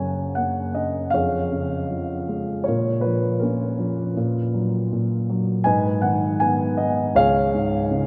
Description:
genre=classical, lyrical solo piano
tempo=80 BPM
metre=4/4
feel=rubato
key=F# major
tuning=A4 = 440 Hz
part: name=dark grand piano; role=solo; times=0.0-8.1 s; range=C#2 to G#5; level=-22 LUFS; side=equal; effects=none
room=wet cathedral reverb, RT60 5.5 s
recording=in a vast, echoing space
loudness=-22 LUFS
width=mono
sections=0.0-8.1 A section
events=none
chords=0.0 F#; 1.1 C#/E#; 2.7 A#m; 4.2 F#maj7/A#; 5.7 G#m; 7.2 C#

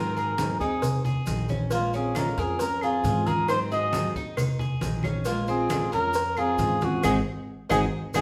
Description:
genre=latin, Cuban son and guajira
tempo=135 BPM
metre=4/4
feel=straight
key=unclear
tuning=A4 = 441 Hz
part: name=trumpet with cup mute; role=melody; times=0.0-8.2 s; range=F4 to Eb5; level=-29 LUFS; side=equal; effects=none
part: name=flamenco guitar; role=second line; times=0.0-8.2 s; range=Ab3 to Gb4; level=-35 LUFS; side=equal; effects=none
part: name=fingerpicked steel-string acoustic guitar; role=accompaniment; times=0.0-8.2 s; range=Eb3 to Ab4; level=-36 LUFS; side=equal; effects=none
part: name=Cuban tres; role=arpeggios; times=0.0-8.2 s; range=Bb3 to Bb4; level=-37 LUFS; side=equal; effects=none
part: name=upright bass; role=bass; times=0.0-8.2 s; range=Ab1 to Ab2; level=-35 LUFS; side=equal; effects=none
part: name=congas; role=percussion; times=0.2-8.2 s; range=none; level=-33 LUFS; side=equal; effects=none
part: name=maracas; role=percussion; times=0.2-8.2 s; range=none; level=-46 LUFS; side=equal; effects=none
part: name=cowbell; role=percussion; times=0.4-8.2 s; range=none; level=-38 LUFS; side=equal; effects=none
part: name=claves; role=percussion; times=2.2-8.2 s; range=none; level=-40 LUFS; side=equal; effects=none
room=wet large studio reverb, RT60 1.1 s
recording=band playing live in one room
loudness=-26 LUFS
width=mono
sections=0.0-8.2 A section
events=band accent 7.0-8.2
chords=0.0 Ab7; 1.7 Bbm9; 3.5 Ab7; 5.3 Bbm9; 7.0 Ab7

